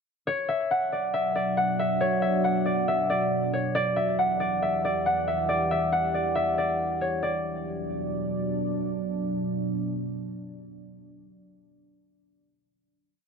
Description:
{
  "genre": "hip hop, drill",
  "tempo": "138 BPM",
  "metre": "4/4",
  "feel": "half-time",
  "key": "B minor",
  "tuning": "A4 = 440 Hz",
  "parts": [
    { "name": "concert harp", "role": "melody", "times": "0.3-9.1 s", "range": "C#5 to F#5", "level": "-25 LUFS", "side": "left 1 dB", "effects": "low-pass filter, ping-pong delay" },
    { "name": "deep dark ambient pad", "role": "sustained chords", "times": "1.2-11.5 s", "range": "E2 to D5", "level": "-29 LUFS", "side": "right 2 dB", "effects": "chorus, built-in reverb" }
  ],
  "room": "moderate plate reverb, RT60 2.8 s",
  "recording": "none",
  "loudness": "-24 LUFS",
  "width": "side -6 dB against mid",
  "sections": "0.3-7.2 breakdown; 7.2-10.7 final chord",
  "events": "none",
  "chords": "0.3 Bm; 3.8 Em7; 7.2 Bm",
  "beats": "| 0.27 0.71 1.14 1.58 | 2.01 2.45 2.88 3.31 | 3.75 4.18 4.62 5.05 | 5.49 5.92 6.36 6.79 | 7.23 7.66 8.10 8.53 | 8.97 9.40 9.84 10.27"
}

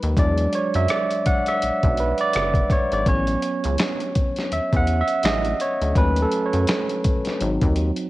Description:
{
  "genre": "R&B, neo-soul",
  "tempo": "83 BPM",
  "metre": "4/4",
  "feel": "swing 57% on 16ths",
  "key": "unclear",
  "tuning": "A4 = 435 Hz",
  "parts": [
    { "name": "barky tine electric piano", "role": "accompaniment", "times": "0.0-8.1 s", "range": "F#3 to F#5", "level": "-22 LUFS", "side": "right 1 dB", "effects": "overdrive, auto-pan, cassette tape" },
    { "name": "rubbery square bass", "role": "bass", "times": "0.0-7.9 s", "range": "F#1 to F#2", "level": "-23 LUFS", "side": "equal", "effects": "none" },
    { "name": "dusty soul sampler-style drum kit", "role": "drums", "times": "0.0-8.1 s", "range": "finger snaps, hi-hat, kick drum, rim click, snare drum", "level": "-23 LUFS", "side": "equal", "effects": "cassette tape" }
  ],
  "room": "digital ambience",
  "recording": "home recording on cassette",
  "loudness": "-19 LUFS",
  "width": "side -17 dB against mid",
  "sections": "0.0-8.1 A section",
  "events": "tine electric piano solo 0.0-8.1",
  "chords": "0.2 E7; 3.1 A6; 6.0 D#m7b5; 7.4 G#7",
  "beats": "| 0.17 0.89 1.61 2.33 | 3.06 3.78 4.50 5.23 | 5.95 6.67 7.40"
}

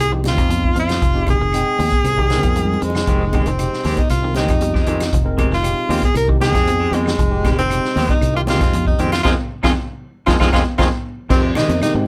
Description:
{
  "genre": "afrobeat",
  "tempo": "117 BPM",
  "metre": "4/4",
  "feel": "straight",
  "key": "F minor",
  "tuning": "A4 = 437 Hz",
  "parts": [
    { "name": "bright tenor saxophone", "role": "melody", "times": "0.0-11.9 s", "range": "Ab3 to Bb4", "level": "-23 LUFS", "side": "equal", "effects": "none" },
    { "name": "fingered electric bass", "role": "bass", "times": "0.0-12.1 s", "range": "F1 to Ab2", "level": "-23 LUFS", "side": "equal", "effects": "none" },
    { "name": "barky tine electric piano", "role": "accompaniment", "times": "0.1-12.1 s", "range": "Ab3 to G5", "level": "-29 LUFS", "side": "equal", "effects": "overdrive" },
    { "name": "electric guitar at the edge of break-up", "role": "arpeggios", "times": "0.1-12.1 s", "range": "C3 to Ab3", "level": "-30 LUFS", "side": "equal", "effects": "none" },
    { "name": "congas", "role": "percussion", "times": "0.2-11.9 s", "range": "none", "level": "-30 LUFS", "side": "equal", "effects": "none" },
    { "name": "vintage drum kit", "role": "drums", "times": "0.3-11.9 s", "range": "crash cymbal, hi-hat, kick drum, snare drum", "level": "-22 LUFS", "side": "equal", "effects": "none" },
    { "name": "shekere", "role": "percussion", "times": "0.3-11.9 s", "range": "none", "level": "-35 LUFS", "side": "equal", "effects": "none" },
    { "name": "claves", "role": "percussion", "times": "0.4-11.9 s", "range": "none", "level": "-39 LUFS", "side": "equal", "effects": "none" },
    { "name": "semi-hollow electric guitar", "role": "stabs", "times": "3.1-11.7 s", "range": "Eb3 to G4", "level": "-27 LUFS", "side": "equal", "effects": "tremolo" },
    { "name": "trombone with bucket mute", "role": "second line", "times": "11.3-12.0 s", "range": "C3 to Eb3", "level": "-26 LUFS", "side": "equal", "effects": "none" }
  ],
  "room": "moderate small room reverb, RT60 0.6 s",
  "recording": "band playing live in one room",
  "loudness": "-17 LUFS",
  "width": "mono",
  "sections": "0.0-11.3 A section",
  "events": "drum fill 2.3-3.1; band accent 9.2-11.3; tine electric piano fill 10.3-11.3",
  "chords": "0.0 Fm9",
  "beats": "0.00 0.51 | 1.02 1.54 2.05 2.57 | 3.08 3.60 4.11 4.62 | 5.14 5.65 6.16 6.68 | 7.19 7.71 8.22 8.73 | 9.25 9.76 10.27 10.79 | 11.30 11.81"
}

